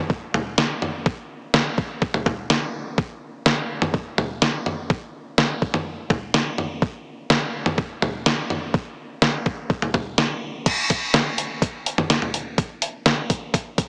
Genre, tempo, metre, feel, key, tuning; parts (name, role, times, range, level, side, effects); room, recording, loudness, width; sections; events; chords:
pop; 125 BPM; 4/4; straight
detuned 8-bit digital drum machine; drums; 0.1-13.9 s; crash cymbal, hi-hat, kick drum, snare drum, toms; -23 LUFS; equal
wet plate reverb, RT60 2.5 s; heavily compressed radio sound, multiband compression, small speaker sound; -23 LUFS; mono
0.0-10.7 A section; 10.7-13.9 B section